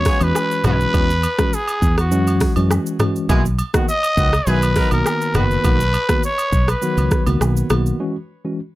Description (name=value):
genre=afrobeats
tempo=102 BPM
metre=4/4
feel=straight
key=B major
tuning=A4 = 440 Hz
part: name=growling trumpet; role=melody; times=0.0-7.3 s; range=F#4 to D#5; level=-21 LUFS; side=equal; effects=digital delay
part: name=tine electric piano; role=accompaniment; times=0.0-8.6 s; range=D#3 to F#4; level=-22 LUFS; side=left 1 dB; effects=overdrive, fast stereo tremolo
part: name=fingered electric bass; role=bass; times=0.0-7.9 s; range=F#1 to F#2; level=-18 LUFS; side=equal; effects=none
part: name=warm horn section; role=second line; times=0.1-5.4 s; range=C#3 to A#4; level=-26 LUFS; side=right 1 dB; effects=none
part: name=afro-pop drum kit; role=drums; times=0.1-8.0 s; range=hi-hat, kick drum, rim click, shaker, toms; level=-19 LUFS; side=equal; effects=none
part: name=agogo bells and woodblock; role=percussion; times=0.2-7.8 s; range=none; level=-30 LUFS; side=right 3 dB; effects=none
room=little or no reverb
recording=none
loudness=-15 LUFS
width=side -17 dB against mid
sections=0.0-8.0 A section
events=none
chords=0.0 E69; 3.3 Bmaj7; 8.0 E69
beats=0.35 | 0.94 1.53 2.12 2.71 | 3.29 3.88 4.47 5.06 | 5.65 6.24 6.82 7.41 | 8.00 8.59